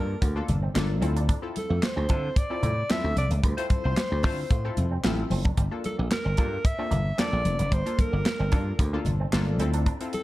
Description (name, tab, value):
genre	early-eighties boogie funk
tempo	112 BPM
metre	4/4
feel	straight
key	G dorian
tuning	A4 = 439 Hz
part	breathy alto saxophone	melody	0.0-10.2 s	A4 to E5	-31 LUFS	equal	slapback echo
part	funky polysynth comp	accompaniment	0.0-10.2 s	Bb3 to C5	-34 LUFS	left 3 dB	chorus
part	electric guitar with an envelope filter	riff	0.0-10.2 s	G3 to D4	-39 LUFS	right 5 dB	lush chorus
part	slap bass	bass	0.0-9.9 s	F1 to D3	-26 LUFS	equal	none
part	tight funk drum kit	drums	0.2-10.2 s	handclaps, hi-hat, kick drum, snare drum	-26 LUFS	equal	none
part	congas	percussion	0.5-10.2 s	none	-34 LUFS	left 1 dB	none
part	mellow horn section	second line	3.6-4.4 s	A3 to C5	-36 LUFS	left 2 dB	none
room	light reverb, small room ambience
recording	dark, warm production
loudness	-23 LUFS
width	side -16 dB against mid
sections	0.0-10.2 A section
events	band accent 3.4-5.6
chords	0.0 Gm9; 1.0 Dm9; 5.6 Gm9; 9.6 Dm9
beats	0.22 0.76 | 1.29 1.83 2.36 2.90 | 3.44 3.97 4.51 5.04 | 5.58 6.11 6.65 7.18 | 7.72 8.26 8.79 9.33 | 9.86